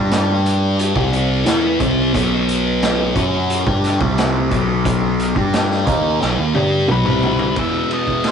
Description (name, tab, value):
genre	psychedelic rock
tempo	88 BPM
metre	4/4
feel	straight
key	unclear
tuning	A4 = 438 Hz
part	thick fuzz guitar	riff	0.0-8.3 s	E2 to G4	-17 LUFS	equal	distortion, phaser
part	fuzz picked electric bass	bass	0.0-8.3 s	B1 to G2	-21 LUFS	left 1 dB	overdrive
part	vintage drum kit	drums	0.1-8.3 s	hi-hat, kick drum, ride cymbal, snare drum, toms	-21 LUFS	right 1 dB	none
part	octave-fuzz lead guitar	melody	6.9-8.3 s	B4 to E5	-22 LUFS	left 3 dB	distortion
room	wet small room reverb, RT60 0.6 s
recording	rough rehearsal-room recording, tube saturation, nothing above 10.7 kHz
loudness	-15 LUFS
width	side -7 dB against mid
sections	0.0-7.6 A section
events	drum fill 6.2-7.6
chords	0.0 G5; 0.9 B; 7.6 E5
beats	0.10 0.78 1.46 | 2.14 2.81 3.49 4.17 | 4.85 5.53 6.21 6.89 | 7.57 8.24